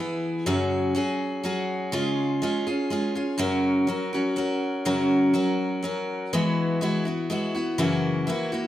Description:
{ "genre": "country", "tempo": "123 BPM", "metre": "3/4", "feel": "straight", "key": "unclear", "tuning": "A4 = 443 Hz", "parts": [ { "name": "picked steel-string acoustic guitar", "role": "solo", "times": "0.0-8.7 s", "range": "F#2 to A#4", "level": "-23 LUFS", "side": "equal", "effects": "none" } ], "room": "wet large studio reverb, RT60 0.9 s", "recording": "none", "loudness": "-23 LUFS", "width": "side -12 dB against mid", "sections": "0.0-8.7 A section", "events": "none", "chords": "0.5 F#sus2; 1.9 C#; 3.4 F#; 6.3 Eadd9; 7.8 F#7", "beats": "| 0.46 0.95 1.44 | 1.93 2.41 2.90 | 3.39 3.88 4.37 | 4.85 5.34 5.83 | 6.32 6.81 7.29 | 7.78 8.27" }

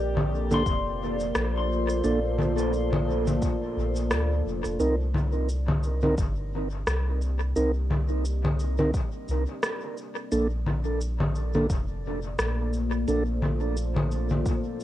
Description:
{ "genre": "ambient dub", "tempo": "87 BPM", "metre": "4/4", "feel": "swing 57% on 16ths", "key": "C dorian", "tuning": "A4 = 440 Hz", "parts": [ { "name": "deep dark ambient pad", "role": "sustained chords", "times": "0.0-14.8 s", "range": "Bb3 to Eb5", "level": "-32 LUFS", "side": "left 1 dB", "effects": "chorus, built-in reverb, cassette tape" }, { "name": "pedal steel guitar", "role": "arpeggios", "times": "0.0-3.3 s", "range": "G4 to C6", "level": "-36 LUFS", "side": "left 8 dB", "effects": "cassette tape, tape echo" }, { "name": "soft dub sub bass", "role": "bass", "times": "0.0-14.4 s", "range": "F1 to D2", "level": "-28 LUFS", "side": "equal", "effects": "none" }, { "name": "electronic congas, cabasa and rim click", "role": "drums", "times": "0.2-14.8 s", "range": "none", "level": "-30 LUFS", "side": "left 1 dB", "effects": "dub echo" }, { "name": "mellow tonewheel organ", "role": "stabs", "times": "0.5-13.2 s", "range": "Bb3 to Bb4", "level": "-29 LUFS", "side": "right 2 dB", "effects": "slow rotary speaker, low-pass filter, cassette tape, dub echo" }, { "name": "electronic kick drum", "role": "drums", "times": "0.7-14.6 s", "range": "none", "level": "-28 LUFS", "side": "equal", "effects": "none" } ], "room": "light reverb", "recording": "home recording on cassette", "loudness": "-24 LUFS", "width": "side -13 dB against mid", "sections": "0.0-4.8 A section; 4.8-14.8 A section", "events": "band accent 4.1-4.5; filter sweep on tonewheel organ 4.8-14.8", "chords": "0.0 Bbmaj7; 4.8 Cm7; 10.3 Bbmaj7", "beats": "0.66 1.35 | 2.04 2.73 3.42 4.11 | 4.80 5.49 6.18 6.87 | 7.56 8.25 8.94 9.63 | 10.32 11.01 11.70 12.39 | 13.08 13.77 14.46" }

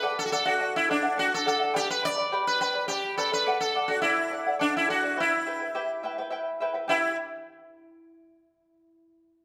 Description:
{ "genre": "andean folk, Andean ensemble", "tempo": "105 BPM", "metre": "3/4", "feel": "straight", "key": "E minor", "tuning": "A4 = 439 Hz", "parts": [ { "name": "sitar", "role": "melody", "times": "0.0-7.2 s", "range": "D4 to D5", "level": "-28 LUFS", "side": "equal", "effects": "none" }, { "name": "charango", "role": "accompaniment", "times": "0.0-7.1 s", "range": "E4 to B5", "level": "-32 LUFS", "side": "equal", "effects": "none" } ], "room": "wet large studio reverb, RT60 1.4 s", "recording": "band playing live in one room", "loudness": "-27 LUFS", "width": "mono", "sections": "0.0-6.9 A section; 6.9-8.6 B section", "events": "none", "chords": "0.0 D; 1.8 G; 3.5 D; 5.2 Em", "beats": "| 0.03 0.61 1.18 | 1.76 2.33 2.90 | 3.48 4.05 4.62 | 5.19 5.76 6.33 | 6.89" }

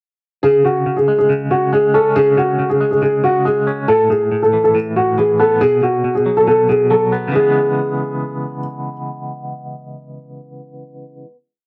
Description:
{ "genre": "hip hop", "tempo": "139 BPM", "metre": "4/4", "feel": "half-time", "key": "C# minor", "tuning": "A4 = 441 Hz", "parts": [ { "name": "dark grand piano", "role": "melody", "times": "0.4-8.6 s", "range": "F#4 to A4", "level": "-16 LUFS", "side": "equal", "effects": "none" }, { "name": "electric guitar with an envelope filter", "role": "accompaniment", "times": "0.4-11.4 s", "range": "A2 to C#4", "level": "-24 LUFS", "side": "equal", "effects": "tremolo, cassette tape" } ], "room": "moderate studio reverb, RT60 0.5 s", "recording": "home recording on cassette", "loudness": "-15 LUFS", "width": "mono", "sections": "0.4-7.3 hook; 7.3-10.8 final chord", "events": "none", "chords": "0.4 C#5; 3.9 Asus2; 5.6 B5; 7.3 C#m7", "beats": "| 0.43 0.86 1.29 1.73 | 2.16 2.59 3.02 3.45 | 3.88 4.32 4.75 5.18 | 5.61 6.04 6.47 6.91 | 7.34 7.77 8.20 8.63 | 9.06 9.50 9.93 10.36" }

